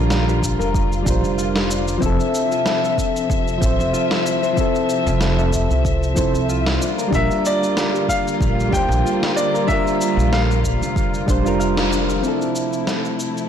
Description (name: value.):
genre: sunset chillout.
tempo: 94 BPM.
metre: 4/4.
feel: swing 55% on 16ths.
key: F major.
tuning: A4 = 439 Hz.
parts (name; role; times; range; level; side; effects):
soft electric-piano-like synth keys; accompaniment; 0.0-13.5 s; F3 to E5; -22 LUFS; moving between left 4 dB and right 4 dB; chorus, auto-pan, digital delay.
warm studio string section; sustained chords; 0.0-13.5 s; C3 to E5; -25 LUFS; left 1 dB; none.
Celtic harp; arpeggios; 0.0-13.5 s; D4 to F5; -28 LUFS; left 6 dB; digital delay.
upright bass; bass; 0.0-12.2 s; F1 to D2; -21 LUFS; equal; transformer saturation.
electronic snare drum and cabasa; drums; 0.1-13.5 s; none; -26 LUFS; equal; none.
electronic kick drum; drums; 0.4-11.4 s; none; -23 LUFS; right 1 dB; none.
bright baby grand piano; melody; 7.1-11.9 s; D5 to G5; -23 LUFS; equal; digital delay.
room: moderate plate reverb, RT60 2.3 s.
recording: blown-out, overdriven recording, overdrive.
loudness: -16 LUFS.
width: side -8 dB against mid.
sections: 0.0-12.2 A section; 12.2-13.5 B section.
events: band accent 11.8-12.1.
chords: 0.0 Bb6; 2.0 Fmaj7; 6.8 Bb6; 12.2 Fmaj7.